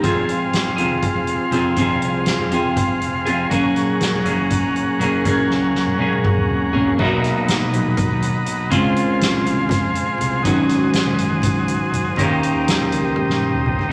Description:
psychedelic rock; 242 BPM (eighths); 7/8; straight; A4 = 440 Hz
overdriven combo organ; sustained chords; 0.0-13.9 s; F4 to Eb6; -26 LUFS; equal
clean electric guitar; riff; 0.0-13.9 s; Ab2 to Ab4; -21 LUFS; equal; phaser
fuzz fingered electric bass; bass; 0.0-13.9 s; F1 to G2; -32 LUFS; equal; overdrive
soft-mallet drum kit; drums; 0.0-13.9 s; crash cymbal, hi-hat, kick drum, snare drum, toms; -26 LUFS; equal
congas; percussion; 0.0-13.9 s; -34 LUFS; equal
moderate large studio reverb, RT60 1.4 s; -19 LUFS; mono
0.0-7.0 A section; 7.0-13.9 B section
drum fill 5.5-7.0, 13.2-13.9
0.0 Fm; 3.5 Gbadd9; 7.0 Bmaj7; 8.7 Dbmaj7; 10.4 Ab7sus4; 12.2 Eb7
| 0.04 0.28 0.53 0.78 1.03 1.28 1.53 | 1.77 2.02 2.27 2.52 2.77 3.01 3.26 | 3.51 3.76 4.01 4.25 4.50 4.75 5.00 | 5.25 5.50 5.74 5.99 6.24 6.49 6.74 | 6.98 7.23 7.48 7.72 7.97 8.22 8.47 | 8.72 8.96 9.21 9.46 9.71 9.95 10.20 | 10.45 10.69 10.94 11.19 11.44 11.68 11.93 | 12.18 12.43 12.67 12.92 13.17 13.41 13.66 | 13.91

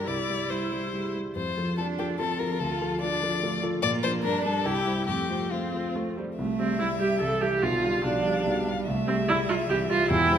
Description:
quick classical-period movement for piano quartet; 136-151 BPM; 3/4; rubato; F major, C major from 6.4 s; A4 = 440 Hz
warm violin; melody; 0.0-10.4 s; F4 to G5; -30 LUFS; left 6 dB
rich cello; second line; 0.0-10.4 s; D3 to F4; -34 LUFS; right 6 dB
dark grand piano; accompaniment; 0.0-10.4 s; E1 to F5; -29 LUFS; equal
rich viola; accompaniment; 0.0-10.4 s; G3 to A4; -29 LUFS; right 3 dB
wet recital hall reverb, RT60 1.6 s; -24 LUFS; side -9 dB against mid
0.0-6.4 A section; 6.4-10.4 B section
0.1 C; 1.4 F; 2.6 Dm; 3.8 Bb; 4.2 Gm; 4.7 C; 5.1 F; 6.4 C; 7.6 G7/B; 8.9 C
| 0.07 0.50 0.93 | 1.36 1.78 2.19 | 2.60 3.02 3.43 | 3.83 4.24 4.66 | 5.08 5.52 5.95 | 6.38 6.80 7.21 | 7.63 8.05 8.47 | 8.88 9.29 9.70 | 10.10

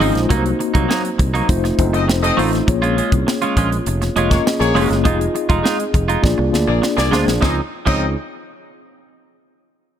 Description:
polished 1980s jazz-funk pop; 101 BPM; 4/4; straight; Db major; A4 = 440 Hz
warm horn section; second line; 0.0-8.1 s; Bb3 to Eb5; -23 LUFS; left 2 dB
mellow tine electric piano; accompaniment; 0.0-8.1 s; Ab3 to Eb5; -20 LUFS; left 3 dB; fast stereo tremolo, analog chorus
semi-hollow electric guitar; riff; 0.0-8.1 s; F3 to F4; -22 LUFS; right 5 dB; wide subtle chorus
fingered electric bass; bass; 0.0-8.1 s; F1 to D2; -20 LUFS; equal
tight funk drum kit; drums; 0.0-8.0 s; crash cymbal, hi-hat, kick drum, snare drum; -20 LUFS; equal
studio reverb; -15 LUFS; side -9 dB against mid
0.0-7.4 A section; 7.4-9.8 B section
drum fill 6.2-7.4
0.3 Cm7b5; 1.5 F7; 2.7 Bbm7; 5.1 Fm7; 6.2 Bb7; 7.4 Dbmaj9
| 0.30 0.90 1.49 2.08 | 2.68 3.27 3.86 4.46 | 5.05 5.65 6.24 6.83 | 7.43 8.02

